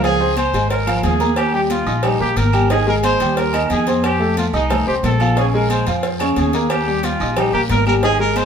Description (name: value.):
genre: latin, salsa.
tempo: 180 BPM.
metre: 4/4.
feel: straight.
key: unclear.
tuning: A4 = 440 Hz.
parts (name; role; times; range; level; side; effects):
warm trumpet; melody; 0.0-8.4 s; Eb4 to C5; -20 LUFS; right 2 dB; none.
clear upright piano; accompaniment; 0.0-8.4 s; Db3 to Eb6; -20 LUFS; equal; none.
upright bass; bass; 0.0-8.4 s; Ab1 to F2; -20 LUFS; left 1 dB; none.
agogo bells and timbales; percussion; 0.0-8.4 s; none; -26 LUFS; right 4 dB; none.
congas; percussion; 0.0-8.4 s; none; -27 LUFS; left 2 dB; none.
cowbell; percussion; 0.0-8.4 s; none; -27 LUFS; equal; none.
guiro; percussion; 0.0-8.4 s; none; -34 LUFS; left 2 dB; none.
claves; percussion; 0.4-8.4 s; none; -35 LUFS; left 3 dB; none.
room: wet stone room reverb, RT60 1.2 s.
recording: band playing live in one room.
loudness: -15 LUFS.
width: side -7 dB against mid.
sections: 0.0-8.4 A section.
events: none.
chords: 0.0 Dbmaj7; 1.4 Eb; 2.7 Abmaj7; 4.0 F7; 5.4 Bbm7; 6.7 Eb.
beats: | 0.04 0.37 0.70 1.04 | 1.37 1.70 2.04 2.37 | 2.70 3.04 3.37 3.70 | 4.04 4.37 4.70 5.04 | 5.37 5.70 6.04 6.37 | 6.70 7.03 7.37 7.70 | 8.03 8.36.